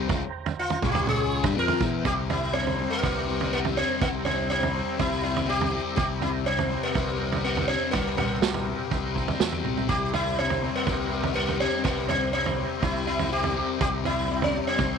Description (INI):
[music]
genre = psychedelic rock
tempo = 122 BPM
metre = 4/4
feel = straight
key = C phrygian dominant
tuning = A4 = 440 Hz
[part]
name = percussive tonewheel organ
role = sustained chords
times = 0.0-15.0 s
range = Ab4 to Db6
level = -37 LUFS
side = right 11 dB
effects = slow rotary speaker, chorus vibrato
[part]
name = fuzz guitar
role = riff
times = 0.0-15.0 s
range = C3 to F4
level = -29 LUFS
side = left 13 dB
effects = distortion, phaser
[part]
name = growling picked electric bass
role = bass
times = 0.0-15.0 s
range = C2 to G2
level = -32 LUFS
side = equal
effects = overdrive
[part]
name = vintage drum kit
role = drums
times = 0.1-14.9 s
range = kick drum, snare drum, toms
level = -29 LUFS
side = right 5 dB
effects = none
[part]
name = sitar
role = melody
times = 0.6-15.0 s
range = Bb3 to Bb4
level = -28 LUFS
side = right 1 dB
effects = tape echo
[sound]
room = light reverb, small room ambience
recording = 1960s-style stereo with parts hard left and right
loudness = -23 LUFS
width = side -6 dB against mid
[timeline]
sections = 0.0-2.1 A section; 2.1-15.0 B section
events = sitar solo 0.0-2.1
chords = 0.0 C7(no3); 0.8 Db5; 1.4 C7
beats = | 0.10 0.59 1.08 1.57 | 2.06 2.55 3.04 3.53 | 4.02 4.51 5.00 5.49 | 5.98 6.46 6.96 7.45 | 7.93 8.42 8.91 9.40 | 9.89 10.38 10.87 11.36 | 11.85 12.34 12.83 13.32 | 13.81 14.30 14.79